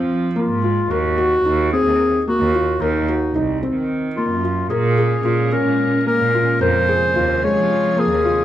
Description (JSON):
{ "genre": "contemporary instrumental, chamber music in an uneven meter", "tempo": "221 BPM (eighths)", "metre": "7/8", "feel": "straight", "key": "Eb dorian", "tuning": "A4 = 441 Hz", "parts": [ { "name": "felt-muted upright piano", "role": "arpeggios", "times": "0.0-8.4 s", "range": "Ab3 to Bb4", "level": "-21 LUFS", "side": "left 2 dB", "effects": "none" }, { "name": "rich cello", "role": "bass", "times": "0.0-8.4 s", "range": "C2 to F3", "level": "-21 LUFS", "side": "right 4 dB", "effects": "none" }, { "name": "warm clarinet", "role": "melody", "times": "0.4-8.4 s", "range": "Eb4 to Db5", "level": "-19 LUFS", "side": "left 2 dB", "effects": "none" }, { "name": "soft additive organ-like pad", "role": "sustained chords", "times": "4.7-8.4 s", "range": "C3 to Ab4", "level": "-26 LUFS", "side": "right 1 dB", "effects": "ensemble chorus, built-in reverb" } ], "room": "moderate recital hall reverb, RT60 1.6 s", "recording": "dark, warm production", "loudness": "-16 LUFS", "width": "side -12 dB against mid", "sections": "0.0-8.4 A section", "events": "none", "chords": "0.0 Fm; 0.9 Ebm; 4.7 Bbm7; 6.6 Fm" }